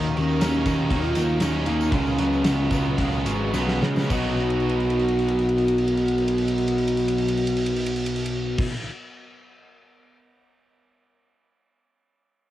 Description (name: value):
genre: rock, shoegaze and dream pop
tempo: 104-122 BPM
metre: 4/4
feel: straight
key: B lydian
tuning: A4 = 439 Hz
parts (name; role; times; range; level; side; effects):
- glassy FM pad; sustained chords; 0.0-8.7 s; B3 to C#6; -38 LUFS; left 1 dB; ensemble chorus, built-in reverb, cassette tape
- fingerpicked twelve-string acoustic guitar; arpeggios; 0.0-8.7 s; F#3 to F#4; -39 LUFS; left 7 dB; none
- cranked stack guitar; riff; 0.0-8.7 s; B2 to E#4; -28 LUFS; equal; overdrive, cassette tape
- crunchy overdriven guitar; riff; 0.0-8.7 s; B2 to F#4; -30 LUFS; right 6 dB; reverse reverb, cassette tape
- thick fuzz guitar; riff; 0.0-8.7 s; B2 to F#4; -33 LUFS; left 7 dB; distortion, analog chorus, cassette tape
- growling picked electric bass; bass; 0.0-8.7 s; G#1 to C#3; -27 LUFS; equal; overdrive
- pure breathy sine lead; melody; 0.2-8.7 s; C#4 to F#4; -26 LUFS; equal; chorus, cassette tape, analog delay
- gated 80s drum kit; drums; 0.2-10.2 s; crash cymbal, kick drum, ride cymbal, snare drum; -29 LUFS; equal; cassette tape
- tambourine; percussion; 0.2-8.7 s; none; -44 LUFS; left 8 dB; none
room: small room ambience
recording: home recording on cassette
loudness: -20 LUFS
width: side -14 dB against mid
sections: 0.0-4.1 A section; 4.1-8.7 B section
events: slowing down 0.0-4.1; drum fill 3.5-4.1, 4.4-8.6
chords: 0.0 D#m7; 1.9 C#7sus4; 4.1 Bmaj7